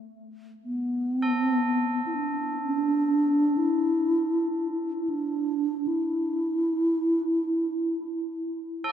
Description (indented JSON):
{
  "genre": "world meditative, free-time meditation music",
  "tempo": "free time",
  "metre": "none",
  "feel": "none",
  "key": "unclear",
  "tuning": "A4 = 440 Hz",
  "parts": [
    { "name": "mellow hollow bass flute", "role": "melody", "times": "0.6-8.4 s", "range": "B3 to E4", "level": "-24 LUFS", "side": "equal", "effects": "diffuse ambient delay" },
    { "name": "tubular bells", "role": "texture", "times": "1.2-8.9 s", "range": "A4", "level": "-34 LUFS", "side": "equal", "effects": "none" }
  ],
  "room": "wet cathedral reverb, RT60 5.0 s",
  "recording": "none",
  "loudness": "-24 LUFS",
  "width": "side -9 dB against mid",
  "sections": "0.0-8.9 A section",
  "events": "none",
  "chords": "none"
}